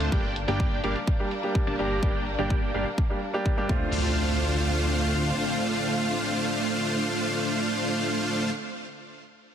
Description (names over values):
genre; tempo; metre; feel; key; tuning
EDM, festival progressive house; 126 BPM; 4/4; straight; D minor; A4 = 439 Hz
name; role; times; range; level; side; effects
warm concert grand piano; accompaniment; 0.0-8.6 s; G3 to G4; -32 LUFS; right 1 dB; sidechain pumping, digital delay
warm studio string section; sustained chords; 0.0-8.5 s; D3 to F4; -35 LUFS; left 1 dB; sidechain pumping
dense compressed supersaw; riff; 0.0-8.5 s; A3 to Bb5; -27 LUFS; equal; sidechain pumping, low-pass filter, digital delay
fat analog bass; bass; 0.0-5.3 s; G1 to D2; -29 LUFS; equal; sidechain pumping
big-room dance drum kit; drums; 0.0-3.8 s; crash cymbal, hi-hat; -40 LUFS; left 4 dB; none
electronic kick drum; drums; 0.1-3.8 s; none; -26 LUFS; equal; none
impact; sound effects; 3.7-8.6 s; none; -38 LUFS; equal; none
room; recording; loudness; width
moderate lush hall reverb, RT60 1.7 s; heavily compressed radio sound, multiband compression; -24 LUFS; side -9 dB against mid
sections
0.0-3.9 A section; 3.9-7.7 B section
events
filter sweep on supersaw synth 0.0-3.9; filter sweep on analog synth bass 0.0-3.9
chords
0.1 Gm; 3.7 Dm7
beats
| 0.12 0.60 1.07 1.55 | 2.03 2.50 2.98 3.46 | 3.93 4.41 4.88 5.36 | 5.84 6.31 6.79 7.26